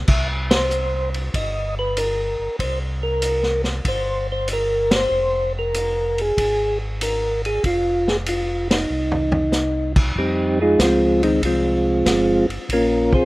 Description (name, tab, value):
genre	soul jazz organ trio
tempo	95 BPM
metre	4/4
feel	swing 69% on 8ths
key	F minor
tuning	A4 = 440 Hz
part	mellow tonewheel organ	bass	0.0-13.2 s	F1 to F2	-26 LUFS	equal	slow rotary speaker
part	percussive tonewheel organ	melody	0.1-13.2 s	Eb3 to E5	-20 LUFS	equal	slow rotary speaker, overdrive, chorus vibrato
part	vintage drum kit	drums	0.1-13.2 s	crash cymbal, hi-hat, kick drum, ride cymbal, snare drum, toms	-24 LUFS	equal	none
room	studio reverb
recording	rough home demo mix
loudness	-18 LUFS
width	side -19 dB against mid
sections	0.0-10.2 A section; 10.2-13.2 B section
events	band accent 0.4-0.7, 4.8-5.1, 8.6-8.9; drum fill 8.9-9.5; tonewheel organ solo 10.2-13.2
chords	0.1 C5; 5.1 Fm; 8.9 Cm; 10.2 Fm9; 12.7 Bbm9